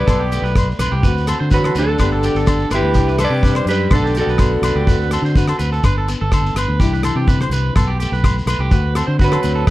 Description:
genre	highlife guitar band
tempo	125 BPM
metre	4/4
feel	straight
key	G major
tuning	A4 = 440 Hz
part	clean electric guitar	melody	0.0-5.6, 9.2-9.7 s	D4 to D5	-20 LUFS	right 3 dB	none
part	growling tenor saxophone	second line	0.0-5.6, 9.3-9.7 s	D3 to B3	-25 LUFS	left 6 dB	none
part	nylon-string guitar	accompaniment	0.0-9.7 s	G2 to G4	-26 LUFS	left 5 dB	none
part	electric guitar at the edge of break-up	arpeggios	0.0-9.7 s	G4 to C5	-24 LUFS	right 4 dB	spring reverb, slapback echo
part	fingered electric bass	bass	0.0-9.7 s	G1 to D3	-19 LUFS	equal	none
part	damped 70s drum kit	drums	0.1-9.7 s	hi-hat, kick drum, rim click	-16 LUFS	equal	none
part	agogo bells	percussion	0.1-9.4 s	none	-28 LUFS	left 5 dB	none
part	shekere	percussion	0.1-9.6 s	none	-24 LUFS	left 1 dB	none
room	small room ambience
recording	dry, close 1970s-style studio recording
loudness	-14 LUFS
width	side -16 dB against mid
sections	0.0-9.7 A section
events	none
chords	0.1 Gadd9/B; 1.0 D7; 2.0 Gadd9; 3.0 Cadd9; 3.9 Gadd9/B; 4.9 D7; 5.8 Gadd9; 6.8 Cadd9; 7.8 Gadd9/B; 8.7 D7

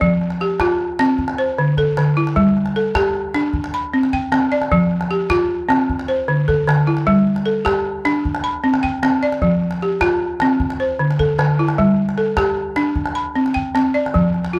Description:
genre	west african traditional, West African string and xylophone music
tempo	102 BPM (dotted quarters)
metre	12/8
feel	straight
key	F lydian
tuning	A4 = 442 Hz
part	balafon	arpeggios	0.0-14.6 s	D3 to B5	-18 LUFS	equal	none
part	calabash	percussion	0.0-14.6 s	none	-27 LUFS	equal	none
room	small room ambience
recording	dry, close 1970s-style studio recording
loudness	-18 LUFS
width	mono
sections	0.0-14.1 A section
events	none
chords	0.0 F5; 1.2 D5; 2.4 G5; 3.5 C5; 4.7 F5; 5.9 D5; 7.1 G5; 8.2 C5; 9.4 F5; 10.6 D5; 11.8 G5; 13.0 C5

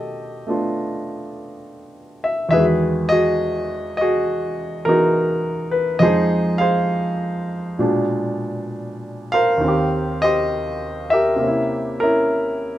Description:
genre	solo jazz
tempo	68 BPM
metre	4/4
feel	swing 68% on 8ths, rubato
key	unclear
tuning	A4 = 440 Hz
part	warm grand piano	solo	0.0-12.8 s	Eb2 to F5	-18 LUFS	equal	none
room	moderate small room reverb, RT60 0.6 s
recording	none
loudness	-17 LUFS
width	side -13 dB against mid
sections	0.0-12.8 A section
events	none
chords	0.0 B7alt; 2.5 Emaj9; 6.0 Fm7; 7.8 Bb7b9; 9.6 Eb6; 11.4 C7b9

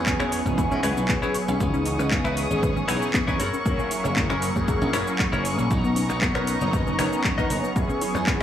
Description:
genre	nu-disco, nu disco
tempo	117 BPM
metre	4/4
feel	straight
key	unclear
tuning	A4 = 441 Hz
part	mellow synth brass	accompaniment	0.0-8.4 s	E3 to A#5	-27 LUFS	equal	chorus, phaser, tape echo
part	muted chamber string section	sustained chords	0.0-8.4 s	B3 to D#6	-31 LUFS	right 1 dB	sidechain pumping
part	glassy slap bass	bass	0.0-8.4 s	E1 to G#2	-27 LUFS	equal	none
part	wide unison pluck	arpeggios	0.1-8.4 s	A#3 to C#5	-32 LUFS	left 1 dB	sidechain pumping, tape echo
part	direct-recorded clean electric guitar	riff	0.1-8.4 s	D#4 to E5	-30 LUFS	left 3 dB	lush chorus, tape echo
part	electronic kick drum	drums	0.1-8.4 s	none	-27 LUFS	equal	overdrive
part	house drum kit	drums	0.1-8.4 s	cabasa, finger snaps, handclaps, hi-hat	-29 LUFS	equal	overdrive
room	light reverb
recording	small room reverb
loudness	-21 LUFS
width	side -10 dB against mid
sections	0.0-8.4 A section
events	none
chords	0.0 E6; 1.6 C#m9; 3.4 F#7; 5.7 Bmaj9; 7.8 E6

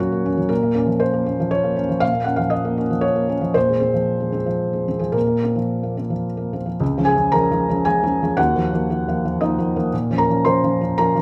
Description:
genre	neoclassical minimalist piano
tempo	116 BPM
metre	3/4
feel	rubato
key	Bb minor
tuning	A4 = 440 Hz
part	felt-muted upright piano	solo	0.0-11.2 s	Db2 to C6	-20 LUFS	equal	none
room	light reverb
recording	band playing live in one room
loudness	-20 LUFS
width	mono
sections	0.0-6.8 A section; 6.8-11.2 B section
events	none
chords	0.0 Gb/Bb; 0.5 Bbmadd9; 3.6 Fm/Bb; 5.1 Bbsus2; 6.8 Db; 8.4 Ebmadd9; 9.9 Bbm

